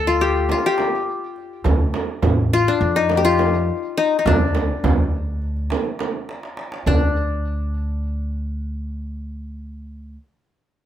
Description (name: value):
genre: Turkish makam ensemble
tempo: 207 BPM (eighths)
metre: 9/8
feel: straight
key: D makam kurdi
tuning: A4 = 440 Hz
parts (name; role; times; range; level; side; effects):
- qanun; melody; 0.0-10.2 s; D4 to A4; -19 LUFS; left 5 dB; plate reverb
- upright bass; bass; 0.0-10.2 s; A1 to F2; -22 LUFS; equal; none
- darbuka; percussion; 0.2-7.1 s; none; -26 LUFS; equal; none
- frame drum; percussion; 0.5-7.1 s; none; -23 LUFS; right 5 dB; none
room: moderate studio reverb, RT60 0.6 s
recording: none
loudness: -18 LUFS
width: side -10 dB against mid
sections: 0.0-6.9 A section; 6.9-9.5 B section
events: drum fill 6.3-6.9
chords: none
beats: 0.21 0.50 0.79 1.08 1.37 | 1.66 1.95 2.23 2.52 2.81 3.10 3.39 3.68 3.97 | 4.26 4.55 4.84 5.13 5.42 5.71 6.00 6.29 6.58 | 6.87 7.16 7.45 7.74 8.03 8.31 8.60 8.89 9.18